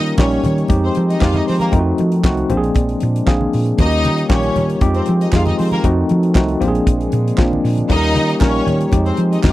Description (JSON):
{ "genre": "disco", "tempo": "117 BPM", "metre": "4/4", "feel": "straight", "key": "F minor", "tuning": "A4 = 440 Hz", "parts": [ { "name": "rich studio string section", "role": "second line", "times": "0.0-9.5 s", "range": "Bb3 to F5", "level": "-21 LUFS", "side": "left 1 dB", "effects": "none" }, { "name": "mellow tine electric piano", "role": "accompaniment", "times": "0.0-9.5 s", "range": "Eb3 to F5", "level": "-18 LUFS", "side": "left 1 dB", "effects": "medium stereo tremolo" }, { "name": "mellow French horn section", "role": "sustained chords", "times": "0.0-9.5 s", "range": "Eb3 to A4", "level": "-25 LUFS", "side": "right 2 dB", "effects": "none" }, { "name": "hollow-body short-scale fingered electric bass", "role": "bass", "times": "0.0-9.5 s", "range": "Bb1 to F3", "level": "-19 LUFS", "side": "equal", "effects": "none" }, { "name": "damped 70s drum kit", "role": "drums", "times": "0.1-9.5 s", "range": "hi-hat, kick drum, snare drum", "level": "-16 LUFS", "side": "equal", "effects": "none" }, { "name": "congas", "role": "percussion", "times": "0.2-9.5 s", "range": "none", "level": "-26 LUFS", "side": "left 2 dB", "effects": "none" }, { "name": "group handclap", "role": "percussion", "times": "0.2-9.5 s", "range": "none", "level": "-29 LUFS", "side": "right 6 dB", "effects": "none" } ], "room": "little or no reverb", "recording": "dry, close 1970s-style studio recording", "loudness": "-13 LUFS", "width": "side -16 dB against mid", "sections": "0.0-9.5 A section", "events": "tine electric piano fill 2.2-3.8", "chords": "0.0 Eb7; 0.7 Fm9; 1.7 F7b9; 2.5 Bb9; 3.8 Eb7; 4.8 Fm9; 5.8 F7b9; 6.6 Bb9; 7.9 Eb7; 8.9 Fm9" }